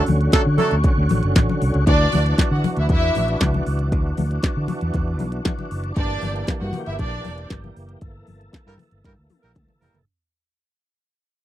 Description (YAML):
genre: disco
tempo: 117 BPM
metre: 4/4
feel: straight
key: D major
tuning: A4 = 440 Hz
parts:
  - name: overdriven tonewheel organ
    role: sustained chords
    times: 0.0-10.1 s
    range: D3 to A4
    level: -27 LUFS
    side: equal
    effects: chorus vibrato, slow rotary speaker
  - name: warm horn section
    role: stabs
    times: 0.0-0.8, 8.7-10.0 s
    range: F#3 to Bb4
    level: -20 LUFS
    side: right 4 dB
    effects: none
  - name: fingered electric bass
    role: bass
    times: 0.1-10.0 s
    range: E1 to D3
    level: -22 LUFS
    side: equal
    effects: none
  - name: glitchy drum kit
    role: drums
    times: 0.1-10.1 s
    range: handclaps, hi-hat, kick drum, snare drum, toms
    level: -20 LUFS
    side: equal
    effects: none
  - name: congas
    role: percussion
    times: 0.1-9.9 s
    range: none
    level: -28 LUFS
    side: left 5 dB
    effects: none
  - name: warm studio violin section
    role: second line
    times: 1.9-7.5 s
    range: D4 to F#5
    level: -24 LUFS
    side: right 1 dB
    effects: none
room: little or no reverb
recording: dry, close 1970s-style studio recording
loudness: -18 LUFS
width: side -13 dB against mid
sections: 0.0-1.9 A section; 1.9-10.1 B section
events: fade-out 1.9-10.1; band accent 8.0-10.1; drum fill 9.0-10.1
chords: 0.0 Dmaj7; 1.9 Dadd9; 6.0 Gm6